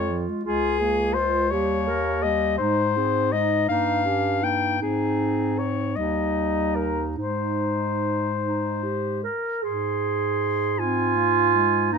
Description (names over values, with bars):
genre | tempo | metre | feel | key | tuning
classical, lyrical piece for single-reed quartet | 47-57 BPM (dotted quarters) | 6/8 | rubato | Ab major | A4 = 439 Hz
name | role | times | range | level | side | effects
mellow soprano saxophone | melody | 0.0-12.0 s | Ab4 to C6 | -25 LUFS | left 7 dB | none
mellow clarinet | second line | 0.0-12.0 s | Eb4 to Bb4 | -26 LUFS | right 5 dB | none
warm clarinet | accompaniment | 0.0-12.0 s | F3 to Db4 | -31 LUFS | left 2 dB | none
clear bass clarinet | bass | 0.0-12.0 s | Db2 to Ab2 | -28 LUFS | right 2 dB | none
room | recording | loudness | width
light reverb | minimal, uncompressed stereo recording | -21 LUFS | side -6 dB against mid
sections
0.0-9.7 A section; 9.7-12.0 B section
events
none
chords
0.4 Bbm7/Db; 1.5 Eb7; 2.6 Ab; 3.7 Eb7/G; 4.8 Ab; 6.0 Eb; 7.2 Ab